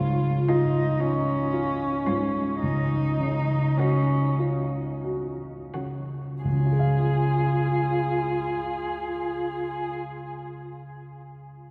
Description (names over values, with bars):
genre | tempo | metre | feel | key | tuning
classical, slow romantic movement for piano quartet | 27-38 BPM (dotted quarters) | 6/8 | rubato | Db major | A4 = 440 Hz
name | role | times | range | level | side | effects
muted cello | second line | 0.0-9.9 s | Db4 to F4 | -31 LUFS | equal | none
dark baby grand piano | accompaniment | 0.0-11.7 s | Db2 to F5 | -28 LUFS | equal | none
muted violin | melody | 0.5-9.9 s | F4 to Ab4 | -37 LUFS | equal | none
room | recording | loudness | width
wet cathedral reverb, RT60 5.6 s | recorded in a church or concert hall | -25 LUFS | mono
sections
0.0-6.4 A section; 6.4-10.3 B section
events
slowing down 0.0-6.4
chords
0.0 Db; 2.6 Gb5/Db; 6.4 Db